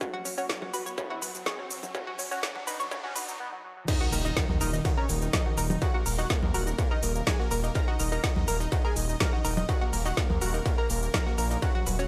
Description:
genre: melodic techno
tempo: 124 BPM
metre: 4/4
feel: straight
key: Eb minor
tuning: A4 = 439 Hz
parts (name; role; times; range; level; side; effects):
- fat analog lead; melody; 0.0-12.1 s; Eb3 to Bb4; -38 LUFS; equal; chorus, sidechain pumping, tape echo
- analog pluck; arpeggios; 0.0-12.0 s; Db4 to Db5; -38 LUFS; equal; chorus, sidechain pumping, delay
- deep house drum kit; drums; 0.0-12.1 s; congas, crash cymbal, hi-hat, ride cymbal, shaker, snare drum; -35 LUFS; equal; sidechain pumping on perc, sidechain pumping on hats, sidechain pumping on cymbals
- electronic kick drum; drums; 0.0-11.7 s; none; -31 LUFS; equal; distortion
- riser and impact; sound effects; 0.0-5.8 s; none; -44 LUFS; equal; none
- soft supersaw; second line; 3.9-12.1 s; Eb4 to Bb5; -41 LUFS; equal; sidechain pumping, delay
- swinging big-band drum kit; drums; 3.9-12.0 s; hi-hat, snare drum; -50 LUFS; equal; none
- gritty driven synth bass; bass; 4.1-12.1 s; Eb1 to Eb2; -32 LUFS; equal; tube saturation, sidechain pumping
room: light reverb, digital ambience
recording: high-pass filter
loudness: -28 LUFS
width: mono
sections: 0.0-3.9 A section; 3.9-12.1 B section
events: build-up 0.0-3.9; riser 0.0-3.4; filter sweep on analog synth lead 0.0-3.9; break 3.4-3.9; drop 3.9-12.1; impact 3.9-5.8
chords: 0.0 Gbsus4; 3.9 Ebm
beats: | 0.01 0.49 0.98 1.46 | 1.95 2.43 2.91 3.40 | 3.88 4.37 4.85 5.33 | 5.82 6.30 6.79 7.27 | 7.75 8.24 8.72 9.21 | 9.69 10.17 10.66 11.14 | 11.62

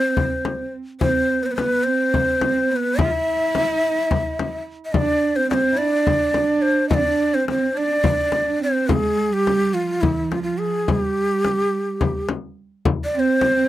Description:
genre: Turkish makam ensemble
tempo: 213 BPM (eighths)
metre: 7/8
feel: straight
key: unclear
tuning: A4 = 440 Hz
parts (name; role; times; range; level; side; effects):
- breathy ney; melody; 0.0-13.7 s; E4-40c to E5-34c; -20 LUFS; equal; none
- dark cello; second line; 0.0-13.7 s; E3-38c to F4; -23 LUFS; right 4 dB; none
- frame drum; percussion; 0.2-13.5 s; none; -22 LUFS; left 3 dB; none
room: light reverb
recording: dry, close 1970s-style studio recording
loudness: -18 LUFS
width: side -14 dB against mid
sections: 0.0-12.8 A section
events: none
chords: none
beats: 0.17 0.45 0.73 | 1.01 1.29 1.57 1.86 2.14 2.42 2.70 | 2.98 3.26 3.54 3.82 4.11 4.39 4.67 | 4.95 5.23 5.51 5.79 6.08 6.36 6.64 | 6.92 7.20 7.48 7.76 8.05 8.33 8.61 | 8.89 9.17 9.46 9.74 10.02 10.30 10.59 | 10.87 11.15 11.43 11.71 11.99 12.28 12.56 | 12.84 13.12 13.40

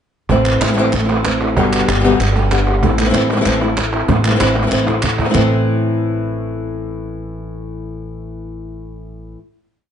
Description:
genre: flamenco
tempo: 190 BPM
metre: 4/4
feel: straight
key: A minor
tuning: A4 = 440 Hz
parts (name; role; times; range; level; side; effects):
- flamenco guitar; accompaniment; 0.3-9.4 s; A2 to G4; -19 LUFS; left 2 dB; none
- flamenco guitar; stabs; 0.3-9.4 s; A2 to G4; -22 LUFS; right 1 dB; none
- upright bass; bass; 0.3-9.3 s; G1 to A1; -20 LUFS; equal; none
- cajon; percussion; 0.3-5.4 s; none; -22 LUFS; right 4 dB; none
- palmas hand claps; percussion; 0.3-5.4 s; none; -20 LUFS; right 2 dB; none
room: light reverb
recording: nothing above 10.5 kHz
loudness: -13 LUFS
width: side -8 dB against mid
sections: 0.3-5.4 groove; 5.4-7.9 final chord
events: drum fill 4.9-5.4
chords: 0.3 Am; 1.6 G; 2.8 Am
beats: | 0.30 0.62 0.93 1.25 | 1.57 1.88 2.20 2.52 | 2.83 3.15 3.46 3.78 | 4.09 4.41 4.72 5.04 | 5.35 5.67 5.99 6.30 | 6.62 6.93 7.25 7.57

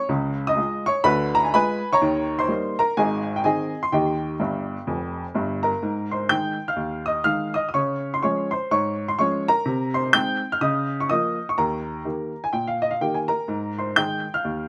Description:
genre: jazz, stride piano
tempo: 125 BPM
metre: 4/4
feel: swing 61% on 8ths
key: Ab major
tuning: A4 = 439 Hz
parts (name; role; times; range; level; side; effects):
- clear upright piano; solo; 0.0-14.7 s; F1 to G6; -23 LUFS; equal; none
room: little or no reverb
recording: recorded outdoors, with no room sound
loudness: -23 LUFS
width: mono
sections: 0.0-5.8 A section; 5.8-14.7 B section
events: upright piano fill 4.4-5.8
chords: 0.1 Db; 1.1 Ddim7; 2.0 Eb7; 3.0 Ab; 3.9 Eb; 5.8 Ab; 7.7 Db; 9.7 Ab/C; 10.6 Bbm/Db; 11.6 Eb; 13.5 Ab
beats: | 0.10 0.58 1.05 1.53 | 2.01 2.49 2.96 3.44 | 3.92 4.40 4.87 5.35 | 5.83 6.31 6.79 7.26 | 7.74 8.22 8.70 9.18 | 9.66 10.14 10.62 11.10 | 11.57 12.05 12.54 13.02 | 13.50 13.98 14.46

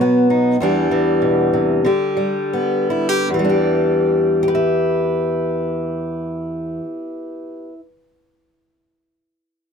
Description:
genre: folk, solo fingerstyle acoustic guitar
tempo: 78-102 BPM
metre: 4/4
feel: rubato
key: E minor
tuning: A4 = 439 Hz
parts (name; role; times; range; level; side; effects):
- fingerpicked steel-string acoustic guitar; solo; 0.0-7.8 s; E2 to E5; -16 LUFS; equal; none
room: light reverb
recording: none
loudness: -16 LUFS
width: side -6 dB against mid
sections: 0.0-3.3 A section; 3.3-6.3 B section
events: slowing down 0.0-3.3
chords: 0.0 B; 0.6 Em7; 1.8 G/D; 3.3 Em7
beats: | 0.58 1.20 1.85 2.54 | 3.28 4.03 4.77 5.52

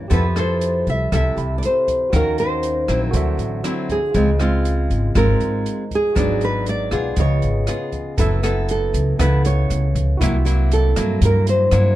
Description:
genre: bossa nova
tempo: 119 BPM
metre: 4/4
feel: straight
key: unclear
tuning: A4 = 439 Hz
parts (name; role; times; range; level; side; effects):
- barky tine electric piano; accompaniment; 0.0-12.0 s; Bb3 to B5; -29 LUFS; right 3 dB; none
- nylon-string guitar; accompaniment; 0.0-12.0 s; G2 to Bb4; -24 LUFS; left 1 dB; none
- nylon-string guitar; melody; 0.1-12.0 s; F4 to E5; -21 LUFS; right 1 dB; none
- upright bass; bass; 0.1-12.0 s; Gb1 to G2; -19 LUFS; equal; none
- open jazz drum kit; drums; 0.1-11.8 s; hi-hat, kick drum, rim click; -25 LUFS; equal; none
room: light reverb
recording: dark, warm production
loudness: -16 LUFS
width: side -14 dB against mid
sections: 0.0-8.2 A section; 8.2-12.0 B section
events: nylon-string guitar solo 8.2-12.0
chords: 0.1 Fmaj9#11; 2.1 Ebm7; 3.1 D9; 4.1 Dbmaj7; 6.2 Abm7b5; 7.2 Db7; 8.2 Gbm7; 10.2 C7#11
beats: | 0.10 0.60 1.11 1.61 | 2.12 2.63 3.13 3.64 | 4.14 4.65 5.15 5.66 | 6.16 6.67 7.17 7.68 | 8.18 8.69 9.19 9.69 | 10.20 10.70 11.21 11.71

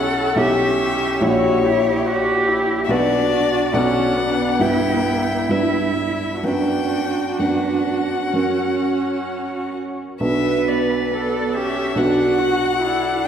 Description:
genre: classical, slow romantic movement for piano quartet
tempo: 62-73 BPM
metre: 4/4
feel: rubato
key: B minor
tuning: A4 = 439 Hz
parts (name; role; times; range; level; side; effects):
- rich violin; melody; 0.0-13.3 s; C#5 to G5; -24 LUFS; left 6 dB; none
- rich cello; second line; 0.0-13.3 s; D4 to B4; -22 LUFS; right 2 dB; none
- warm baby grand piano; accompaniment; 0.0-13.3 s; A#1 to C#5; -21 LUFS; right 1 dB; none
- warm viola; accompaniment; 0.0-13.3 s; B3 to G4; -26 LUFS; right 2 dB; none
room: wet concert hall reverb, RT60 2.3 s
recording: heard from further back in the room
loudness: -17 LUFS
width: side -8 dB against mid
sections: 0.0-13.3 A section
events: none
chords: 0.0 C#m7b5/B; 1.2 A#dim7; 2.9 Bm; 4.6 Em/G; 6.5 Bm/F#; 8.4 F#; 10.2 Bm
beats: 0.38 1.23 2.06 | 2.90 3.75 4.62 5.51 | 6.45 7.41 8.35 9.30 | 10.23 11.13 11.98 12.82

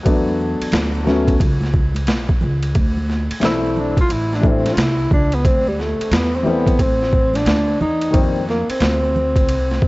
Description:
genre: hip hop, jazz-hop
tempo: 89 BPM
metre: 4/4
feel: swing 64% on 16ths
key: unclear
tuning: A4 = 440 Hz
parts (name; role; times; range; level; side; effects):
- warm upright piano; accompaniment; 0.0-8.4 s; Eb3 to D4; -21 LUFS; left 2 dB; none
- upright bass; bass; 0.0-9.9 s; A1 to F2; -22 LUFS; equal; none
- boom bap sampler-style drum kit; drums; 0.1-9.9 s; hi-hat, kick drum, ride cymbal, snare drum; -19 LUFS; equal; overdrive
- egg shaker and congas; percussion; 0.1-9.9 s; none; -29 LUFS; right 2 dB; none
- breathy tenor saxophone; melody; 3.5-9.9 s; G3 to F4; -19 LUFS; equal; analog delay
room: light reverb, small room ambience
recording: worn, warbling old tape, cassette tape, warbly pitch drift, nothing above 7.8 kHz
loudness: -15 LUFS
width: side -21 dB against mid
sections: 0.0-2.7 A section; 2.7-9.9 B section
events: tenor saxophone solo 2.7-9.9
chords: 0.1 E9sus4; 2.7 D9sus4; 8.1 F9sus4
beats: | 0.05 0.72 1.40 2.07 | 2.75 3.42 4.10 4.77 | 5.44 6.12 6.79 7.47 | 8.14 8.81 9.49

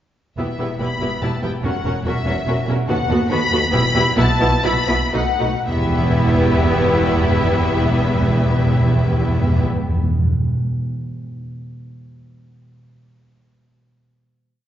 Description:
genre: classical, dramatic, fast romantic movement for symphony orchestra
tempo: 110-145 BPM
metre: 3/4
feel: rubato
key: E minor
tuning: A4 = 440 Hz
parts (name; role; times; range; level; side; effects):
- rich symphonic violin section; melody; 0.4-9.6 s; E5 to B5; -24 LUFS; left 3 dB; none
- warm symphonic violin section; second line; 0.4-9.6 s; F#4 to B4; -26 LUFS; left 3 dB; none
- rich symphonic viola section; accompaniment; 0.4-9.6 s; A3 to F#4; -23 LUFS; equal; none
- rich symphonic cello section; bass; 0.4-9.6 s; D#2 to B2; -24 LUFS; right 2 dB; none
- rich symphonic double bass section; bass; 0.4-9.6 s; E1 to D#2; -22 LUFS; right 1 dB; none
- timpani; percussion; 1.6-2.2, 5.7-10.3 s; E2; -20 LUFS; equal; none
room: wet scoring stage reverb, RT60 1.8 s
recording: heard from further back in the room, nothing above 7.5 kHz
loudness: -16 LUFS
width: side -11 dB against mid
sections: 0.4-5.7 A section; 5.7-8.9 final chord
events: slowing down 2.3-5.7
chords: 0.4 Em; 1.6 F#7/E; 2.9 B7/D#; 3.7 E5; 4.2 B7sus4; 5.1 B7; 5.7 Em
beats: | 0.38 0.80 1.22 | 1.64 2.06 2.48 | 2.89 3.31 3.73 | 4.18 4.64 5.14 | 5.67 6.21 6.74 | 7.27 7.80 8.34

